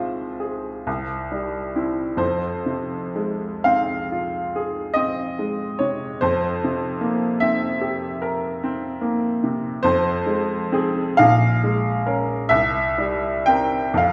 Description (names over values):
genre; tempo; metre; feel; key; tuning
classical, romantic nocturne for solo piano; 39-51 BPM (dotted quarters); 9/8; rubato; F minor; A4 = 440 Hz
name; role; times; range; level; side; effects
clear upright piano; solo; 0.0-14.1 s; Bb1 to G5; -22 LUFS; equal; none
room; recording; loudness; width
wet recital hall reverb, RT60 1.3 s; heard from further back in the room; -22 LUFS; mono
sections
0.0-14.1 A section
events
none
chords
0.0 Fm/C; 0.9 C; 2.2 Fm; 6.2 C7/F; 9.8 Fm; 11.2 Bbm7; 12.5 C7